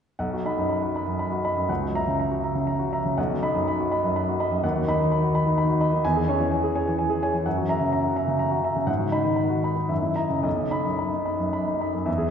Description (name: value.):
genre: classical, romantic character piece for solo piano.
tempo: 106-130 BPM.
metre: 3/4.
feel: rubato.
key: B major.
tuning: A4 = 441 Hz.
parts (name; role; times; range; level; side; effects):
clear grand piano; solo; 0.2-12.3 s; B1 to B5; -22 LUFS; equal; none.
room: wet concert hall reverb, RT60 1.8 s.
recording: recorded in a church or concert hall, nothing above 10.8 kHz.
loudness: -22 LUFS.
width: side -7 dB against mid.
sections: 0.2-12.1 A section.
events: none.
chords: 0.2 B; 1.7 F#7/C#; 3.2 B; 4.6 B/D#; 6.0 C#m/E; 7.5 F#7; 8.9 G#m7; 9.9 F#6; 10.4 B.